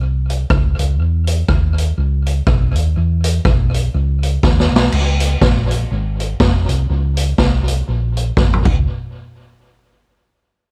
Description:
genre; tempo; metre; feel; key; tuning
ska; 122 BPM; 4/4; swing 58% on 8ths; unclear; A4 = 440 Hz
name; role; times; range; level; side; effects
hollow-body short-scale fingered electric bass; bass; 0.0-8.8 s; F1 to E2; -18 LUFS; equal; none
street-band drum kit; drums; 0.3-8.8 s; crash cymbal, hi-hat, kick drum, rim click, snare drum, toms; -18 LUFS; equal; tape echo
room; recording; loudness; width
light reverb; dark, warm production; -16 LUFS; mono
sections
0.0-4.9 A section; 4.9-8.9 B section; 8.9-10.7 C section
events
drum fill 4.4-4.9, 8.4-8.9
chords
none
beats
0.01 0.50 | 0.99 1.49 1.98 2.47 | 2.96 3.45 3.94 4.44 | 4.93 5.42 5.91 6.40 | 6.89 7.39 7.88 8.37

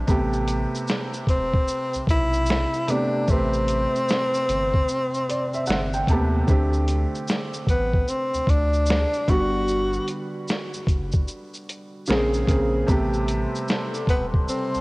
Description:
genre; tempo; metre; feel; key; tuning
lo-fi hip hop; 75 BPM; 4/4; swing 64% on 16ths; A dorian; A4 = 440 Hz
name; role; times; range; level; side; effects
felt-muted upright piano; accompaniment; 0.0-14.8 s; C3 to A5; -27 LUFS; right 1 dB; cassette tape
saturated sub bass; bass; 0.0-14.8 s; E1 to D#2; -26 LUFS; equal; none
lo-fi sampler-style drum kit; drums; 0.1-14.8 s; hi-hat, kick drum, shaker, snare drum; -24 LUFS; equal; cassette tape
breathy tenor saxophone; melody; 1.3-14.8 s; B3 to F#4; -24 LUFS; left 1 dB; cassette tape
hollow soft pad; sustained chords; 12.9-14.8 s; G3 to C6; -33 LUFS; left 1 dB; chorus, cassette tape
room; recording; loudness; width
light reverb; home recording on cassette; -20 LUFS; side -23 dB against mid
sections
0.1-14.8 A section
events
none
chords
0.1 Am9; 6.5 D7sus4; 9.3 Gmaj7; 12.1 Bbm9; 12.9 Am9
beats
| 0.08 0.88 1.68 2.48 | 3.28 4.08 4.88 5.68 | 6.48 7.28 8.08 8.88 | 9.68 10.48 11.28 12.08 | 12.88 13.68 14.48

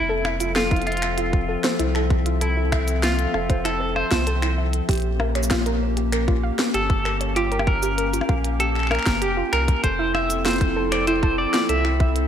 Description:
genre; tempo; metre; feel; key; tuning
IDM; 97 BPM; 4/4; straight; F major; A4 = 439 Hz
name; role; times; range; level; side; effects
clean electric guitar; melody; 0.0-12.1 s; E4 to E5; -25 LUFS; equal; tremolo, slapback echo, digital delay
warbly tape-like pad; sustained chords; 0.0-12.3 s; F3 to E5; -27 LUFS; left 2 dB; chorus, built-in reverb
warbly dusty pluck; arpeggios; 0.0-12.1 s; E4 to F5; -27 LUFS; right 3 dB; chorus, vintage 12-bit sampler grit, slapback echo, digital delay
warm sub bass; bass; 0.0-12.3 s; F1 to C2; -25 LUFS; equal; none
glitchy drum kit; drums; 0.2-12.3 s; cabasa, finger snaps, hi-hat, percussion blips, snare drum; -27 LUFS; left 1 dB; none
electronic kick drum; drums; 0.7-12.1 s; none; -21 LUFS; equal; none
room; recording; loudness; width
moderate lush hall reverb, RT60 1.5 s; big arena sound; -19 LUFS; side -9 dB against mid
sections
0.0-12.3 A section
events
none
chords
0.0 Fmaj7; 4.9 Bbm6; 9.8 Fmaj7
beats
0.56 1.18 1.79 | 2.41 3.03 3.65 4.27 | 4.89 5.51 6.12 6.74 | 7.36 7.98 8.60 9.22 | 9.84 10.46 11.07 11.69

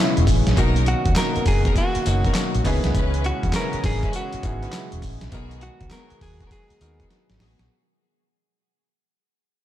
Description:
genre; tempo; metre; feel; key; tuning
R&B, new jack swing; 101 BPM; 4/4; swing 65% on 16ths; C# dorian; A4 = 441 Hz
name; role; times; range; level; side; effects
direct-recorded clean electric guitar; melody; 0.0-7.1 s; F#4 to A#4; -28 LUFS; equal; spring reverb, ping-pong delay
bright concert grand piano; accompaniment; 0.0-7.7 s; A#3 to A#4; -31 LUFS; right 1 dB; none
sweeping resonant pad; sustained chords; 0.0-7.7 s; B2 to F#4; -30 LUFS; left 2 dB; chorus
vintage muted fingered electric bass; bass; 0.2-7.7 s; E1 to E2; -23 LUFS; equal; none
dusty soul sampler-style drum kit; drums; 0.2-7.7 s; handclaps, hi-hat, kick drum, snare drum, tambourine; -23 LUFS; equal; overdrive
warm studio string section; stabs; 0.6-7.6 s; B3 to B4; -32 LUFS; left 2 dB; slapback echo
room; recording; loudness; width
light reverb; none; -19 LUFS; side -12 dB against mid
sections
0.0-7.7 A section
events
fade-out 0.0-7.7; drum fill 7.1-7.7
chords
0.0 C#m7; 0.6 Bmaj7; 2.6 C#m7; 5.3 G#m7/B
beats
| 0.57 1.16 1.76 2.35 | 2.94 3.54 4.13 4.73 | 5.32 5.92 6.51 7.10

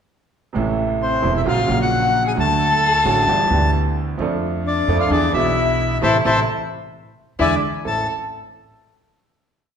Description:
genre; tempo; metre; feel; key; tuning
tango; 132 BPM; 4/4; rubato; A minor; A4 = 441 Hz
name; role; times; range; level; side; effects
bright concert grand piano; accompaniment; 0.5-8.0 s; E1 to A4; -21 LUFS; right 4 dB; none
upright bass; bass; 0.6-8.0 s; E1 to F2; -24 LUFS; equal; none
bandoneon; melody; 1.0-8.1 s; C5 to A5; -19 LUFS; left 2 dB; none
warm violin; second line; 1.0-8.1 s; C4 to A4; -24 LUFS; left 5 dB; none
room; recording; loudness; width
wet large studio reverb, RT60 1.3 s; heard from further back in the room; -16 LUFS; side -7 dB against mid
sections
0.5-7.8 A section; 7.8-9.7 final chord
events
band accent 6.0-7.8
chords
0.5 Am; 1.5 F#/A#; 2.4 D; 3.3 G6; 4.2 Dm/F; 5.1 E7; 6.0 Am; 7.4 E7; 7.8 Am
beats
| 0.55 1.00 1.46 1.91 | 2.37 2.82 3.28 3.73 | 4.19 4.64 5.10 5.55 | 6.01 6.47 6.93 7.39 | 7.85

